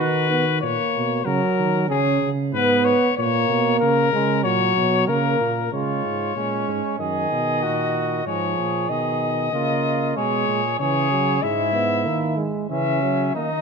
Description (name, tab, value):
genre	classical, imitative canzona for brass ensemble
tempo	94 BPM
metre	4/4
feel	straight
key	unclear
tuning	A4 = 441 Hz
part	warm trumpet	melody	0.0-13.6 s	G#4 to E5	-23 LUFS	left 10 dB	none
part	warm flugelhorn	second line	0.0-0.6, 5.7-13.6 s	C#4 to G#4	-26 LUFS	right 8 dB	none
part	clear euphonium	accompaniment	0.0-13.5 s	D#3 to D#4	-24 LUFS	right 3 dB	none
part	clear tuba	bass	0.0-13.6 s	F#2 to D#3	-26 LUFS	right 3 dB	none
room	light reverb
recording	close, detailed microphones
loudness	-19 LUFS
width	side -5 dB against mid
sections	0.0-5.7 A section; 5.7-13.6 B section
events	none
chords	0.0 B; 0.6 F#/A#; 1.9 C#5; 3.2 A#m7; 4.4 F#/A#; 5.7 C#; 7.0 D#m/F#; 8.3 G#m; 9.5 C#; 10.8 C#m